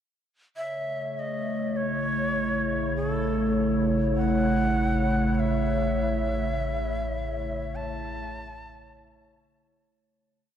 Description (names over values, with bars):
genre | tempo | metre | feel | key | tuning
ambient | 50 BPM | 4/4 | straight | A major | A4 = 440 Hz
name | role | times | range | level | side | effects
warbly tape-like pad | sustained chords | 1.0-10.2 s | C#3 to C#5 | -27 LUFS | equal | chorus, built-in reverb
deep rumbling drone | bass | 2.1-10.1 s | A1 | -32 LUFS | equal | built-in reverb
bright reedy shakuhachi | melody | 0.6-9.6 s | A4 to A5 | -31 LUFS | equal | ping-pong delay
glass harmonica | texture | 0.6-10.2 s | C#5 | -37 LUFS | left 2 dB | none
room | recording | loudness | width
wet huge ambient reverb, RT60 8.8 s | dark, warm production | -24 LUFS | side -9 dB against mid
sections
0.6-10.2 A section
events
fade-out 5.4-10.2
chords
0.6 A